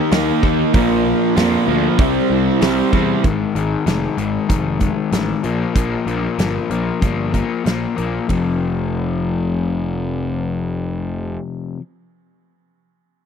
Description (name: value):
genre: classic rock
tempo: 95 BPM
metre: 4/4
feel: straight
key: unclear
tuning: A4 = 441 Hz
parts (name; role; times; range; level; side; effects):
- fingerpicked twelve-string acoustic guitar; accompaniment; 0.0-3.3 s; Bb2 to G4; -25 LUFS; right 13 dB; none
- string machine, full ensemble; sustained chords; 0.0-3.2 s; D4 to E5; -30 LUFS; right 2 dB; none
- crunchy overdriven guitar; riff; 0.0-11.8 s; F2 to Eb4; -20 LUFS; left 8 dB; none
- crunchy overdriven guitar; riff; 0.0-3.2 s; Bb2 to Eb4; -19 LUFS; right 17 dB; none
- fuzz picked electric bass; bass; 0.1-11.4 s; F1 to F2; -22 LUFS; right 1 dB; overdrive
- huge arena drum kit; drums; 0.1-8.4 s; hi-hat, kick drum, ride cymbal, snare drum; -18 LUFS; right 1 dB; none
room: small room ambience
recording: dry, close 1970s-style studio recording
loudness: -16 LUFS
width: side -7 dB against mid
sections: 0.0-3.2 A section; 3.2-8.3 B section; 8.3-10.8 C section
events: none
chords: 0.0 Eb; 0.7 Bb; 2.0 C; 3.2 Ab5; 5.4 Bb5; 8.3 F5